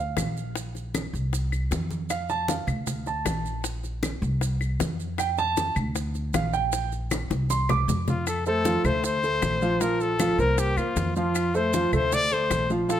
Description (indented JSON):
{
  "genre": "latin, Cuban son and guajira",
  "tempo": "156 BPM",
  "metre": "4/4",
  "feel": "straight",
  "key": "F major",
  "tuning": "A4 = 440 Hz",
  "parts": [
    { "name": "dark baby grand piano", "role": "arpeggios", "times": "0.0-13.0 s", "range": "F3 to D6", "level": "-27 LUFS", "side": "right 2 dB", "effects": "none" },
    { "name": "upright bass", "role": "bass", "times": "0.0-13.0 s", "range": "Bb1 to F2", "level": "-29 LUFS", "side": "equal", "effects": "none" },
    { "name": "bongos", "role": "percussion", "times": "0.2-13.0 s", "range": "none", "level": "-34 LUFS", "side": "left 8 dB", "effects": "none" },
    { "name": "claves", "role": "percussion", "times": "0.2-12.7 s", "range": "none", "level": "-37 LUFS", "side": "left 6 dB", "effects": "none" },
    { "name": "congas", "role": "percussion", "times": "0.2-13.0 s", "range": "none", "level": "-32 LUFS", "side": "equal", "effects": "none" },
    { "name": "maracas", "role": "percussion", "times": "0.2-13.0 s", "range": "none", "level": "-38 LUFS", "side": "right 8 dB", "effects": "none" },
    { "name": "breathy trumpet", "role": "melody", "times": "8.1-13.0 s", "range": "F4 to D5", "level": "-26 LUFS", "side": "left 3 dB", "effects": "none" }
  ],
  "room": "light reverb",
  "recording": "close, detailed microphones",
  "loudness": "-23 LUFS",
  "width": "side -10 dB against mid",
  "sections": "0.0-8.3 A section; 8.3-13.0 B section",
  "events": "grand piano solo 0.0-8.3; drum fill 7.1-8.3",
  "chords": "0.0 Dm; 0.6 Bbsus2; 1.3 Csus4; 2.1 Dm; 2.9 D5; 3.6 Bbsus2; 4.4 Csus4; 5.2 F; 6.0 Bb6; 6.7 Gmadd11/Bb; 7.5 Csus24; 8.3 F; 9.0 Dm7; 9.8 Bb5; 10.6 C7sus4; 11.4 F; 12.1 Dm7",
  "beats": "0.17 | 0.56 0.95 1.33 1.72 | 2.10 2.49 2.87 3.26 | 3.65 4.03 4.42 4.80 | 5.19 5.57 5.96 6.34 | 6.73 7.12 7.50 7.89 | 8.27 8.66 9.04 9.43 | 9.81 10.20 10.59 10.97 | 11.36 11.74 12.13 12.51 | 12.90"
}